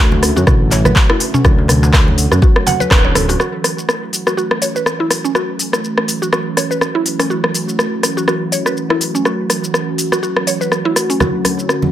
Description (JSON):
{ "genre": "afro house", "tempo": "123 BPM", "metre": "4/4", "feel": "swing 56% on 16ths", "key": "F# minor", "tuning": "A4 = 438 Hz", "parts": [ { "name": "warm analog pad", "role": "sustained chords", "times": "0.0-11.9 s", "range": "D3 to F#4", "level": "-21 LUFS", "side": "right 1 dB", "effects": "chorus, sidechain pumping" }, { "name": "smooth gliding synth bass", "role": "bass", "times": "0.0-3.4 s", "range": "D1 to F#2", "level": "-15 LUFS", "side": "equal", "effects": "sidechain pumping" }, { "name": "congas", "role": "percussion", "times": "0.1-3.3, 11.2-11.9 s", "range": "none", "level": "-21 LUFS", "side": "right 2 dB", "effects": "none" }, { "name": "darbuka", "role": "percussion", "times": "0.1-3.4 s", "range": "none", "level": "-21 LUFS", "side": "left 2 dB", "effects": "none" }, { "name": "deep house drum kit", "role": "drums", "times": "0.2-11.8 s", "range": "handclaps, hi-hat, rim click, shaker", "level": "-17 LUFS", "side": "left 1 dB", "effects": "none" }, { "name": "mallet-like synth pluck", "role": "arpeggios", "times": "0.4-11.3 s", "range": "C#4 to F#5", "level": "-20 LUFS", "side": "right 1 dB", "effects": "chorus, sidechain pumping, dub echo" }, { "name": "electronic kick drum", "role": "drums", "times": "0.5-3.0 s", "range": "none", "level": "-12 LUFS", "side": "equal", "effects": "none" } ], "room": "light reverb", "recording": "none", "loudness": "-12 LUFS", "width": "side -12 dB against mid", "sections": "0.0-3.4 A section; 3.4-11.9 B section", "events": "band accent 2.9; filter sweep on synth pluck 3.4-11.9; filter sweep on analog synth pad 3.4-11.9", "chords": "0.0 Dmaj7; 3.4 F#m7; 11.2 Dmaj7" }